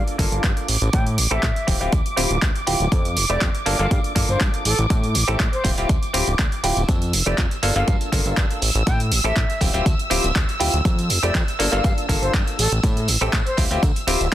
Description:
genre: filtered disco house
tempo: 121 BPM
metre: 4/4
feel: swing 53% on 16ths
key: D minor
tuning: A4 = 440 Hz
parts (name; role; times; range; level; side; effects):
- concert flute; melody; 0.0-13.6 s; A4 to G5; -29 LUFS; equal; sidechain pumping, low-pass filter, tape echo
- bright clav; accompaniment; 0.0-14.3 s; A3 to A4; -25 LUFS; left 1 dB; phaser, sidechain pumping, low-pass filter
- warm symphonic violin section; sustained chords; 0.0-14.3 s; D6 to E6; -29 LUFS; right 1 dB; sidechain pumping, low-pass filter
- fat analog bass; bass; 0.0-14.3 s; D1 to A2; -23 LUFS; equal; tube saturation, sidechain pumping, low-pass filter
- punchy analog drum machine; drums; 0.1-14.3 s; handclaps, hi-hat; -25 LUFS; right 2 dB; sidechain pumping on hats, sidechain pumping on cymbals
- tambourine; percussion; 0.1-14.3 s; none; -36 LUFS; equal; none
- electronic kick drum; drums; 0.2-13.9 s; none; -21 LUFS; equal; none
room: little or no reverb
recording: dense, heavily limited modern master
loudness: -18 LUFS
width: side -13 dB against mid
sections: 0.0-14.3 A section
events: none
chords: 0.0 Gm7; 0.7 A5; 1.7 Dm11; 2.9 Fmaj7; 3.7 Gm7; 4.7 N.C.; 5.6 Dm11; 6.9 Fmaj7; 7.6 Gm7; 8.6 A5; 9.6 Dm11; 10.9 Fmaj7; 11.6 Gm7; 12.6 A5; 13.6 Dm11

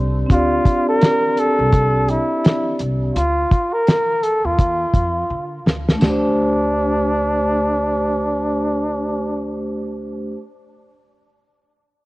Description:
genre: hip hop, jazz-hop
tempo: 84 BPM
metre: 4/4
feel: swing 60% on 16ths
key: D minor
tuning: A4 = 435 Hz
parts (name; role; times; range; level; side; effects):
- vibraphone with soft mallets; accompaniment; 0.0-10.4 s; A3 to D5; -21 LUFS; equal; none
- upright bass; bass; 0.0-10.3 s; C2 to D3; -24 LUFS; equal; none
- breathy flugelhorn; melody; 0.3-9.6 s; D4 to Bb4; -19 LUFS; equal; cassette tape, analog delay
- cloth-damped thuddy drum kit; drums; 0.3-6.2 s; hi-hat, kick drum, snare drum, splash cymbal; -16 LUFS; equal; cassette tape
room: light reverb, small room reverb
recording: home recording on cassette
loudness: -16 LUFS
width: side -20 dB against mid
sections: 0.0-6.0 A section; 6.0-8.9 B section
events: drum fill 5.3-6.0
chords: 0.0 Dm7; 6.0 D5

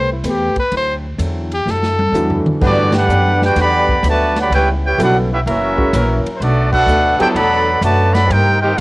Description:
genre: jazz, big band swing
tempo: 126 BPM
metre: 4/4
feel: swing 67% on 8ths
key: G major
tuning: A4 = 444 Hz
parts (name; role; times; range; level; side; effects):
- clear trumpet; melody; 0.0-2.5 s; E4 to C5; -18 LUFS; left 1 dB; cassette tape
- fingerpicked old ladder-braced acoustic guitar; accompaniment; 0.0-8.8 s; F#2 to B4; -25 LUFS; left 1 dB; cassette tape
- upright bass; bass; 0.0-8.8 s; F#1 to G2; -18 LUFS; equal; none
- swinging big-band drum kit; drums; 0.2-8.8 s; crash cymbal, hi-hat, kick drum, ride cymbal, snare drum, toms; -23 LUFS; equal; cassette tape
- warm concert grand piano; accompaniment; 2.1-7.3 s; E3 to F#5; -20 LUFS; right 1 dB; cassette tape
- warm trumpet section; melody; 2.6-8.8 s; B3 to B5; -16 LUFS; equal; cassette tape
- muted trombone section; second line; 2.6-8.8 s; D3 to G4; -20 LUFS; right 2 dB; cassette tape
- bright trombone section; sustained chords; 2.6-8.7 s; Eb3 to B4; -23 LUFS; left 1 dB; cassette tape
room: little or no reverb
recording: home recording on cassette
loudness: -12 LUFS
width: side -21 dB against mid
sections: 0.0-2.6 A section; 2.6-8.8 B section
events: trumpet solo 0.0-2.6; drum fill 1.7-2.6; band accent 2.9, 6.6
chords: 0.0 Am9; 0.7 D9; 2.6 Gmaj7; 4.5 C#m7b5; 5.5 F#7; 6.4 Bm7

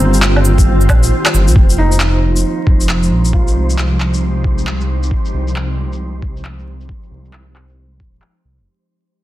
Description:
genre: future garage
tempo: 135 BPM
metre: 4/4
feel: swing 62% on 16ths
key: F minor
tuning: A4 = 440 Hz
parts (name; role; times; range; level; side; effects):
- felt-muted upright piano; accompaniment; 0.0-5.1 s; C4 to F4; -23 LUFS; right 2 dB; sidechain pumping, digital delay
- ethereal airy pad; sustained chords; 0.0-8.7 s; Eb3 to C5; -20 LUFS; equal; ensemble chorus, built-in reverb, sidechain pumping
- dark detuned saw bass; bass; 0.0-8.7 s; Eb1 to C2; -15 LUFS; equal; sidechain pumping
- electronic cabasa, shaker, handclaps and woodblock; drums; 0.0-8.7 s; none; -19 LUFS; equal; overdrive, low-pass filter on perc, low-pass filter on snare
- wind-like tuned noise texture; texture; 0.0-8.7 s; G3 to C5; -29 LUFS; equal; built-in reverb
- electronic kick drum; drums; 0.6-8.1 s; none; -13 LUFS; equal; overdrive
room: light reverb, digital ambience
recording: dense, heavily limited modern master, vinyl crackle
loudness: -11 LUFS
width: side -15 dB against mid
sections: 0.0-1.6 A section; 1.6-8.7 B section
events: kick drops out 1.1-1.6; fade-out 1.6-8.7; filter sweep on drum 1.6-8.7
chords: 0.0 Cm7; 1.6 Fm9

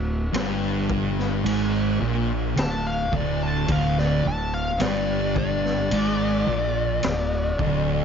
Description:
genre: stoner and doom metal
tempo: 54 BPM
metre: 4/4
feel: straight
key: unclear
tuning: A4 = 440 Hz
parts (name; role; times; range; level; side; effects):
- thick fuzz guitar; riff; 0.0-8.0 s; D2 to Bb2; -27 LUFS; left 10 dB; distortion
- thick fuzz guitar; riff; 0.0-8.0 s; D2 to Bb2; -26 LUFS; right 10 dB; distortion
- fuzz fingered electric bass; bass; 0.0-8.0 s; D1 to Bb1; -28 LUFS; equal; overdrive
- raw garage drum kit; drums; 0.3-7.9 s; kick drum, ride cymbal, snare drum; -30 LUFS; equal; none
- fuzz lead guitar; melody; 2.6-8.0 s; D5 to A5; -26 LUFS; left 2 dB; wah, distortion, slapback echo
room: small room ambience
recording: dark, warm production, nothing above 7.5 kHz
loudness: -21 LUFS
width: side -7 dB against mid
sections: 0.0-8.0 A section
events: lead electric guitar solo 0.0-8.0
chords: none

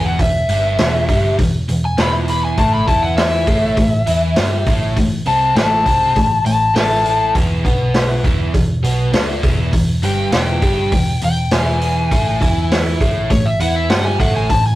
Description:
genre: blues rock power trio and southern rock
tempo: 101 BPM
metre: 4/4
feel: straight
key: unclear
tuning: A4 = 440 Hz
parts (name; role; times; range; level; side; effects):
- overdriven slide guitar; melody; 0.0-14.8 s; C#5 to B5; -18 LUFS; left 2 dB; none
- biting overdriven guitar; riff; 0.0-14.7 s; E2 to G4; -19 LUFS; equal; none
- vintage muted picked electric bass; bass; 0.0-14.8 s; E1 to G2; -20 LUFS; equal; none
- vintage drum kit; drums; 0.2-14.6 s; hi-hat, kick drum, snare drum; -18 LUFS; equal; none
room: moderate studio ambience, RT60 0.5 s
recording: rough rehearsal-room recording, tube saturation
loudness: -13 LUFS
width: side -16 dB against mid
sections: 0.0-14.8 A section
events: electric slide guitar solo 0.0-14.8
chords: 0.0 E5; 2.6 A5; 7.3 E5; 12.1 A5

